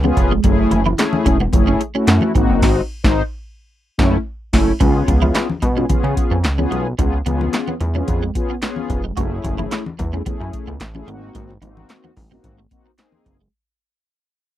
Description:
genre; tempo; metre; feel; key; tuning
early-eighties boogie funk; 110 BPM; 4/4; straight; unclear; A4 = 440 Hz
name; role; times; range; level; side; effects
mellow synth brass; accompaniment; 0.0-13.4 s; A3 to B#4; -20 LUFS; left 2 dB; chorus
clean electric guitar; riff; 0.0-13.5 s; F#3 to F#4; -25 LUFS; right 5 dB; ensemble chorus
chorused synth bass; bass; 0.0-13.5 s; E1 to C#3; -19 LUFS; equal; none
congas; percussion; 0.0-13.2 s; none; -26 LUFS; left 4 dB; none
electro analog drum machine; drums; 0.2-13.4 s; crash cymbal, handclaps, hi-hat, kick drum, snare drum; -19 LUFS; equal; none
room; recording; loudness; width
little or no reverb; dry, close 1970s-style studio recording; -15 LUFS; side -13 dB against mid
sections
0.0-4.8 A section; 4.8-13.5 B section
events
band accent 2.6-4.8; fade-out 4.8-13.5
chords
0.4 F#m9; 2.4 G#7; 3.7 F#m7; 4.8 C#7; 9.2 F#m9; 11.1 G#7

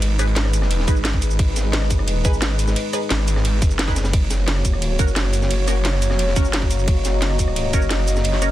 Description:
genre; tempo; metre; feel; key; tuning
dark technical drum and bass; 175 BPM; 4/4; straight; G# minor; A4 = 440 Hz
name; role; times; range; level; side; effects
dark analog pad; sustained chords; 0.0-8.5 s; G#3 to D#5; -28 LUFS; left 1 dB; chorus, sidechain pumping
snarling distorted saw bass; bass; 0.0-8.5 s; F#1 to G#1; -20 LUFS; equal; distortion, overdrive, sidechain pumping
crunchy breakbeat drum kit; drums; 0.0-8.5 s; hi-hat, snare drum; -32 LUFS; equal; none
drum and bass drum kit; drums; 0.0-8.5 s; hi-hat, ride cymbal, rim click, shaker, snare drum; -25 LUFS; right 1 dB; none
deep dark ambient pad; texture; 0.0-8.5 s; F#4 to B5; -30 LUFS; left 3 dB; chorus, built-in reverb, sidechain pumping
filtered dub chord stab; stabs; 0.2-8.5 s; C#4 to B4; -29 LUFS; right 2 dB; phaser, lush chorus, ping-pong delay
electronic kick drum; drums; 0.9-7.8 s; none; -19 LUFS; equal; none
room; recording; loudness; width
little or no reverb; dense, heavily limited modern master; -17 LUFS; side -14 dB against mid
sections
0.0-8.5 A section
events
none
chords
0.0 G#m; 4.1 F#

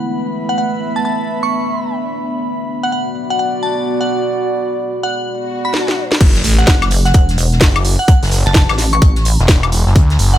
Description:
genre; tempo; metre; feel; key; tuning
bass house; 128 BPM; 4/4; swing 62% on 16ths; F# minor; A4 = 440 Hz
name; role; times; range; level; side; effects
deep dark ambient pad; sustained chords; 0.0-5.7 s; A3 to D5; -24 LUFS; right 2 dB; chorus, built-in reverb, sidechain pumping
airy breathy pad; texture; 0.0-5.7 s; B3 to B5; -20 LUFS; equal; chorus, sidechain pumping
glassy synth bell; melody; 0.5-10.4 s; F#5 to C#6; -21 LUFS; equal; chorus, phaser, tape echo
swell and impact; sound effects; 5.4-8.1 s; none; -23 LUFS; left 1 dB; none
garage drum kit; drums; 5.7-10.4 s; crash cymbal, hi-hat, snare drum, woodblock; -17 LUFS; equal; none
phased detuned saw bass; bass; 6.2-10.4 s; E1 to D2; -13 LUFS; equal; phaser, tube saturation, sidechain pumping
electronic kick drum; drums; 6.2-10.1 s; none; -10 LUFS; equal; none
unplugged drum kit; drums; 6.2-10.4 s; hi-hat, snare drum; -27 LUFS; left 2 dB; none
pulsing pluck wobble bass; bass; 6.7-9.4 s; E1 to A1; -14 LUFS; equal; chorus, sidechain pumping
room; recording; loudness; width
light reverb; none; -12 LUFS; side -12 dB against mid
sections
0.0-6.2 A section; 6.2-10.4 B section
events
swell 5.4-6.2; drum fill 5.7-6.2; drop 6.2-10.4; impact 6.2-8.1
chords
0.0 Asus2; 2.5 Bm; 6.2 F#m

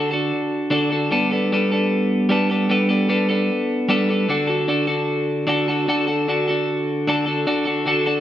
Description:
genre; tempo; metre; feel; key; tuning
rock; 151 BPM; 4/4; straight; G major; A4 = 440 Hz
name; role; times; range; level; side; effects
twelve-string electric guitar; solo; 0.0-8.2 s; D3 to A4; -18 LUFS; equal; none
room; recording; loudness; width
wet recital hall reverb, RT60 1.5 s; recorded in a church or concert hall, nothing above 10.4 kHz; -18 LUFS; side -12 dB against mid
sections
0.0-8.2 A section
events
none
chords
0.0 D; 1.1 Gadd9; 4.3 D

